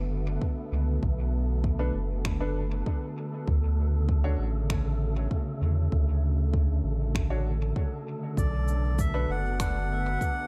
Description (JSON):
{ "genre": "ambient dub", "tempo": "98 BPM", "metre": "4/4", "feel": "straight", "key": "B minor", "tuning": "A4 = 440 Hz", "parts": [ { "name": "warm analog pad", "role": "sustained chords", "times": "0.0-10.5 s", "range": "C#3 to A4", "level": "-37 LUFS", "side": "equal", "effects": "chorus" }, { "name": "warm sub bass", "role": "bass", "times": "0.0-10.2 s", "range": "F#1 to E2", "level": "-29 LUFS", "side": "equal", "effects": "tube saturation" }, { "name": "wind-like tuned noise texture", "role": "texture", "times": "0.0-10.5 s", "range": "A3 to A4", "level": "-43 LUFS", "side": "equal", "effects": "built-in reverb" }, { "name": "electronic kick drum", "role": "drums", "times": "0.4-10.3 s", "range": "none", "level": "-32 LUFS", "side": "equal", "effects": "none" }, { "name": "clear upright piano", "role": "stabs", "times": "1.8-9.3 s", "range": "D4 to C#5", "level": "-42 LUFS", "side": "equal", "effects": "low-pass filter, dub echo" }, { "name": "finger snaps and cabasa", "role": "drums", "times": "2.2-10.3 s", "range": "none", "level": "-43 LUFS", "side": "equal", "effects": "dub echo" }, { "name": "melodica", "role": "melody", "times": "8.4-10.5 s", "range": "D5 to F#5", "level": "-35 LUFS", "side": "equal", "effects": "dub echo" } ], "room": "small room ambience", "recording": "dark, warm production", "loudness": "-28 LUFS", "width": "mono", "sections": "0.0-10.5 A section", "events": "none", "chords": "0.0 Bm7; 3.5 Dmaj7; 8.4 Bm7" }